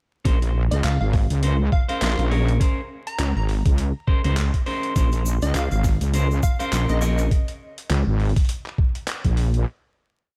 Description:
glitch hop; 102 BPM; 4/4; swing 57% on 16ths; Bb minor; A4 = 439 Hz
clean electric guitar; stabs; 0.2-7.3 s; Db4 to Db5; -31 LUFS; equal; sidechain pumping, diffuse ambient delay
wobble bass; bass; 0.3-9.6 s; Ab1 to Db2; -22 LUFS; equal; chorus, tube saturation
boom bap sampler-style drum kit; drums; 0.3-9.6 s; handclaps, hi-hat, snare drum; -34 LUFS; equal; studio reverb
electronic kick drum; drums; 0.3-9.3 s; -23 LUFS; equal; studio reverb
plucky unison lead; melody; 0.7-7.1 s; Eb5 to Bb5; -34 LUFS; equal; diffuse ambient delay
tube shaker; percussion; 5.0-7.3 s; -39 LUFS; equal
light reverb; vinyl crackle; -22 LUFS; mono
0.3-9.7 drop
drop 0.3-9.7
0.3 Bbm9
| 0.25 0.84 1.43 2.02 | 2.61 3.19 3.78 4.37 | 4.96 5.55 6.14 6.72 | 7.31 7.90 8.49 9.08

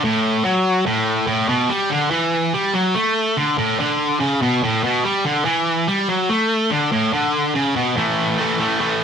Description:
rock; 144 BPM; 4/4; straight; A major; A4 = 441 Hz
distorted electric guitar; solo; 0.0-9.0 s; A2 to A3; -16 LUFS; equal; overdrive
moderate studio reverb, RT60 0.7 s; band playing live in one room; -16 LUFS; side -7 dB against mid
0.0-8.0 A section; 8.0-9.0 B section
0.0 A5
0.03 0.45 0.86 | 1.28 1.70 2.12 2.53 | 2.95 3.37 3.79 4.20 | 4.62 5.04 5.46 5.87 | 6.29 6.71 7.12 7.54 | 7.96 8.38 8.80

